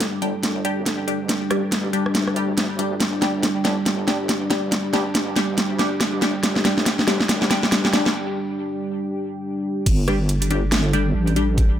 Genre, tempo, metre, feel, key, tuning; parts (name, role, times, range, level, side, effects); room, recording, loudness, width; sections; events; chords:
deep dubstep; 140 BPM; 4/4; swing 59% on 16ths, half-time; A4 = 440 Hz
dark analog pad; sustained chords; 0.0-11.8 s; G3 to A4; -25 LUFS; equal; chorus
deep soft wobble bass; bass; 0.0-11.8 s; G1 to D2; -26 LUFS; equal; chorus, high-pass filter
dubstep drum kit; drums; 0.0-11.7 s; crash cymbal, hi-hat, rim click, snare drum; -22 LUFS; equal; small room ambience
filtered dub chord stab; stabs; 0.2-11.5 s; G3 to G4; -26 LUFS; left 1 dB; phaser, wide subtle chorus, dub echo
electronic kick drum; drums; 9.9-11.7 s; -18 LUFS; equal; small room ambience
moderate spring reverb, RT60 1.9 s; -19 LUFS; side -10 dB against mid
0.0-9.9 A section; 9.9-11.8 B section
build-up 0.0-9.9; drum fill 0.0-8.1; break 8.1-9.9; drop 9.9-11.8
0.0 G5